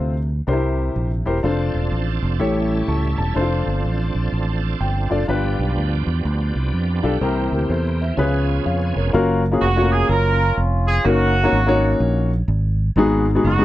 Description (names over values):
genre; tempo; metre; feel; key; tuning
uptempo gospel; 125 BPM; 4/4; swing 63% on 8ths; F# major from 9.1 s; A4 = 440 Hz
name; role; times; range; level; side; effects
warm baby grand piano; accompaniment; 0.0-13.6 s; G2 to C#6; -20 LUFS; left 2 dB; none
fingered electric bass; bass; 0.0-13.6 s; E1 to F2; -20 LUFS; right 1 dB; none
bright tonewheel organ; sustained chords; 1.4-9.1 s; E3 to A4; -28 LUFS; right 5 dB; slow rotary speaker, chorus vibrato
warm horn section; melody; 9.6-13.6 s; A#3 to A#4; -20 LUFS; right 2 dB; none
room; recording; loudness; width
little or no reverb; dry, close 1970s-style studio recording; -17 LUFS; side -15 dB against mid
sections
0.0-9.1 A section; 9.1-13.6 B section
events
grand piano fill 4.6-5.3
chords
0.5 C7; 1.4 F6; 2.4 A7; 3.4 Dm7/F; 5.3 G7; 7.2 C7; 8.2 Db7; 9.1 F#maj7; 11.1 D#m7/F#; 13.0 G#m7